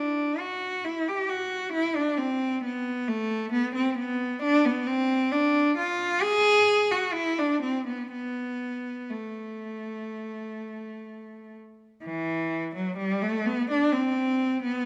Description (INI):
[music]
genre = classical, baroque-style suite movement for unaccompanied cello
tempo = 59-68 BPM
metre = 4/4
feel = rubato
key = A minor from 4.4 s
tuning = A4 = 441 Hz
[part]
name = clear cello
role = solo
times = 0.0-14.8 s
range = E3 to G#4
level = -27 LUFS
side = equal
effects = none
[sound]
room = moderate recital hall reverb, RT60 1.8 s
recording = none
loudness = -27 LUFS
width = mono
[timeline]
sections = 0.0-12.0 A section; 12.0-14.9 A section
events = none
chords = none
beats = | 0.83 1.72 2.62 3.51 | 4.41 5.30 6.21 7.13 | 8.10 9.09 10.07 11.06 | 12.04 12.98 13.92